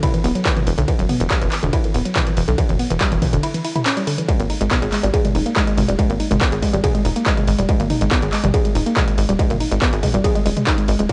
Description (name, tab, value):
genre	driving peak-time techno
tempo	141 BPM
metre	4/4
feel	straight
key	G# harmonic minor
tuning	A4 = 440 Hz
part	woody wave-folded pluck	riff	0.0-11.1 s	D3 to G#4	-24 LUFS	equal	chorus, overdrive, sidechain pumping, cassette tape, tape echo
part	electronic kick drum	drums	0.0-11.1 s	none	-22 LUFS	equal	distortion
part	punchy analog drum machine	drums	0.0-11.1 s	handclaps, hi-hat, ride cymbal, toms	-26 LUFS	equal	overdrive
part	tight sequencer bass	bass	0.2-11.1 s	D1 to B1	-23 LUFS	equal	sidechain pumping
room	light reverb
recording	home recording on cassette, nothing above 10.4 kHz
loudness	-18 LUFS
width	mono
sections	0.0-11.1 A section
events	break 3.4-4.3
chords	0.0 N.C.; 4.3 G#5